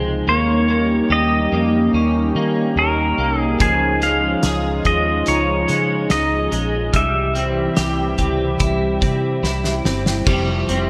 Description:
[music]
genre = dream pop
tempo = 72 BPM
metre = 4/4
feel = straight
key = unclear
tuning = A4 = 440 Hz
[part]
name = warm analog pad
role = sustained chords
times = 0.0-10.9 s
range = C3 to C6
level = -24 LUFS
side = equal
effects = chorus
[part]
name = clean electric guitar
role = arpeggios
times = 0.0-10.9 s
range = Eb3 to Ab4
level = -24 LUFS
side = equal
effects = analog chorus, digital delay
[part]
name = vintage muted fingered electric bass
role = bass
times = 0.0-10.9 s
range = F1 to Eb3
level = -26 LUFS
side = equal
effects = none
[part]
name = pedal steel guitar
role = melody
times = 0.3-9.4 s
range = Ab4 to F5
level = -23 LUFS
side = equal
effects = digital delay
[part]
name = loose indie drum kit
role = drums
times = 3.6-10.9 s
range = crash cymbal, hi-hat, kick drum, snare drum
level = -24 LUFS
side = equal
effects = none
[part]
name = semi-hollow electric guitar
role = accompaniment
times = 10.3-10.9 s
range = F2 to G4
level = -26 LUFS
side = equal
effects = harmonic tremolo, analog chorus
[sound]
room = wet lush hall reverb, RT60 2.4 s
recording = bright 1980s-style digital production, lossy compression artefacts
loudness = -18 LUFS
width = mono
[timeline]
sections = 0.0-10.3 A section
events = drum fill 9.4-10.3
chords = 0.3 Eb7; 3.6 Dbadd9; 6.9 C; 10.3 C/F

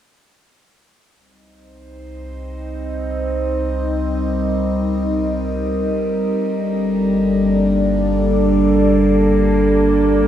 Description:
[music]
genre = ambient, sequencer-driven space music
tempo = free time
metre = none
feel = none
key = unclear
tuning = A4 = 440 Hz
[part]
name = evolving wavetable pad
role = sustained chords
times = 2.2-10.3 s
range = G3 to Eb5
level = -16 LUFS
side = equal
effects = phaser, built-in reverb, shimmer reverb
[part]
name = warm sub bass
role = bass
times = 1.2-10.3 s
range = G1 to C2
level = -23 LUFS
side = equal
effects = none
[sound]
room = wet cathedral reverb, RT60 6.4 s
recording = in a vast, echoing space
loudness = -15 LUFS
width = side -10 dB against mid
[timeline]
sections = 1.2-10.3 A section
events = fade-in on ambient pad 1.2-10.3; fade-in on sub bass 1.2-10.3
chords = 1.2 Cm; 6.4 Gmadd9

